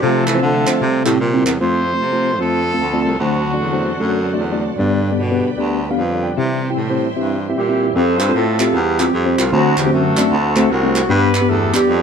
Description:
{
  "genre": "uptempo gospel",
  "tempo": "152 BPM",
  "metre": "4/4",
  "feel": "swing 64% on 8ths",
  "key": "F major",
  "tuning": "A4 = 440 Hz",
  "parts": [
    { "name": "dark horn section", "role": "melody", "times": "0.0-1.2, 7.6-12.0 s", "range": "F3 to C5", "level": "-18 LUFS", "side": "right 2 dB", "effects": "none" },
    { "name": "mellow tine electric piano", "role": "accompaniment", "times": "0.0-11.9 s", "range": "G2 to G5", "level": "-18 LUFS", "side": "left 2 dB", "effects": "medium stereo tremolo" },
    { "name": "bright tonewheel organ", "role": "sustained chords", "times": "0.0-7.9 s", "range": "C3 to F#4", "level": "-26 LUFS", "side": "right 4 dB", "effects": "slow rotary speaker, overdrive, chorus vibrato" },
    { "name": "breathy baritone saxophone", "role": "bass", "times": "0.0-12.0 s", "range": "C2 to E3", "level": "-20 LUFS", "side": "equal", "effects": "none" },
    { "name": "group handclap", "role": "percussion", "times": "0.3-1.5, 8.2-11.8 s", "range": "none", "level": "-25 LUFS", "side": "right 4 dB", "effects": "none" },
    { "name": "clear trumpet", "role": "melody", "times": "1.6-4.6 s", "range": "F#4 to C5", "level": "-21 LUFS", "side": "right 1 dB", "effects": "none" },
    { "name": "warm studio string section", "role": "sustained chords", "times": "1.6-7.9 s", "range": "B4 to C6", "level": "-32 LUFS", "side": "right 2 dB", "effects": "none" }
  ],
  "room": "moderate echo chamber reverb, RT60 1.9 s",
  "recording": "dark, warm production",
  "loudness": "-14 LUFS",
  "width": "side -7 dB against mid",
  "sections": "0.0-1.6 A section; 1.6-8.0 B section; 8.0-12.0 A section",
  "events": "none",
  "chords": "0.0 F/C; 0.8 C; 1.6 F; 3.2 D7; 4.8 G; 6.4 C; 8.0 F; 9.5 D7; 11.1 G",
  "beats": "| 0.03 0.42 0.82 1.21 | 1.61 2.00 2.40 2.80 | 3.19 3.59 3.99 4.39 | 4.78 5.18 5.58 5.97 | 6.37 6.77 7.16 7.56 | 7.95 8.35 8.74 9.13 | 9.53 9.92 10.31 10.70 | 11.10 11.49 11.88"
}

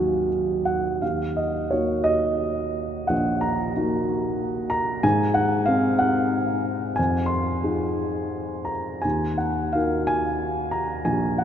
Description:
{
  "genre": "classical, lyrical solo piano",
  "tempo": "82-96 BPM",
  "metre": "3/4",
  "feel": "rubato",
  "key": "Eb dorian",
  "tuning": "A4 = 440 Hz",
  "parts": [
    { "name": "dark baby grand piano", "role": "solo", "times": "0.0-11.4 s", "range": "Bb1 to C6", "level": "-21 LUFS", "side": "equal", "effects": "none" }
  ],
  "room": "wet cathedral reverb, RT60 6.1 s",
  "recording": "in a vast, echoing space",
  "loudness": "-21 LUFS",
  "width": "side -9 dB against mid",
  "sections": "0.0-1.0 A section; 1.0-11.4 A section",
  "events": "none",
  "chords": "0.0 Ebm; 5.0 Ab; 7.0 Fm7; 9.0 Ebm",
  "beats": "0.33 | 1.02 1.72 2.41 | 3.09 3.75 4.40 | 5.04 5.67 6.33 | 6.98 7.63 8.32 | 9.04 9.75 10.41 | 11.07"
}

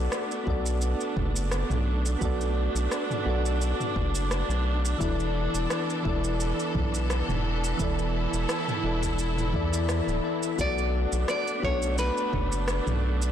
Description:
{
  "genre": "sunset chillout",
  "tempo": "86 BPM",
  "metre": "4/4",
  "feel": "swing 54% on 16ths",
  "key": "B minor",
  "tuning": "A4 = 439 Hz",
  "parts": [
    { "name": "soft electric-piano-like synth keys", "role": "accompaniment", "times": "0.0-13.3 s", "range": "E3 to D5", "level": "-31 LUFS", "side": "moving between left 7 dB and right 6 dB", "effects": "chorus, auto-pan, digital delay" },
    { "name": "clear studio string section", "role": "sustained chords", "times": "0.0-13.3 s", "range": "E3 to A4", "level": "-33 LUFS", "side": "right 1 dB", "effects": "none" },
    { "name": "round analog bass", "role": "bass", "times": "0.0-13.3 s", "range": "D1 to E2", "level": "-28 LUFS", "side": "equal", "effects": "tube saturation" },
    { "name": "deep house drum kit", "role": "drums", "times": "0.1-13.3 s", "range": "rim click, shaker, toms", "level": "-34 LUFS", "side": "right 1 dB", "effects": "overdrive" },
    { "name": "electronic kick drum", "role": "drums", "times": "0.5-12.5 s", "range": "none", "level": "-32 LUFS", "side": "equal", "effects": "overdrive" },
    { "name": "nylon-string guitar", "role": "melody", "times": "10.6-13.3 s", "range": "B4 to D5", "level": "-30 LUFS", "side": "left 1 dB", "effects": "tape echo" }
  ],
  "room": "moderate concert hall reverb, RT60 1.9 s, digital ambience",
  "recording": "blown-out, overdriven recording, overdrive",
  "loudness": "-25 LUFS",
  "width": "side -10 dB against mid",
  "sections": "0.0-13.3 A section",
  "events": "none",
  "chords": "0.0 Bm7; 5.0 E7sus4; 10.6 Bm7",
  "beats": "0.12 0.82 1.52 | 2.22 2.91 3.61 4.31 | 5.01 5.70 6.40 7.10 | 7.80 8.49 9.19 9.89 | 10.59 11.29 11.98 12.68"
}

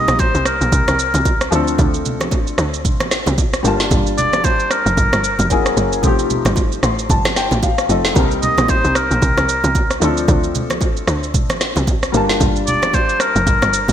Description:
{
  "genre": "amapiano",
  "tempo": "113 BPM",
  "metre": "4/4",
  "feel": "swing 58% on 16ths",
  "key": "C dorian",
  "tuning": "A4 = 440 Hz",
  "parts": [
    { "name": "warm oboe", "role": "melody", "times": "0.0-13.9 s", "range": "Bb4 to Eb5", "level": "-18 LUFS", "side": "equal", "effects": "ping-pong delay" },
    { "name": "warm grand piano", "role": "accompaniment", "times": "0.0-13.9 s", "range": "Eb3 to C6", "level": "-21 LUFS", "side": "left 3 dB", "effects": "analog chorus" },
    { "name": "tight log drum bass", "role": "bass", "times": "0.0-13.9 s", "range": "F1 to D2", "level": "-20 LUFS", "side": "equal", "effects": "none" },
    { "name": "afro-pop drum kit", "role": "drums", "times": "0.1-13.9 s", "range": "kick drum, rim click, shaker, snare drum", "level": "-18 LUFS", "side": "right 1 dB", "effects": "gated reverb" },
    { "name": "bongos and congas", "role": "percussion", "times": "0.1-13.9 s", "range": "none", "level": "-26 LUFS", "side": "right 3 dB", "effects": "none" }
  ],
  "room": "light reverb, small room ambience",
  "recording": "bright 1980s-style digital production",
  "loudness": "-14 LUFS",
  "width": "side -10 dB against mid",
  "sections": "0.0-13.9 A section",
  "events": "grand piano fill 6.6-8.2",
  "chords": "0.0 Cm7; 1.5 Dm7; 3.6 Gm9; 5.5 F#9; 6.0 F9; 8.2 Cm7; 10.0 Dm7; 12.1 Gm9",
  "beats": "0.20 0.73 1.26 | 1.79 2.32 2.85 3.38 | 3.91 4.44 4.97 5.50 | 6.04 6.57 7.10 7.63 | 8.16 8.69 9.22 9.75 | 10.28 10.81 11.35 11.88 | 12.41 12.94 13.47"
}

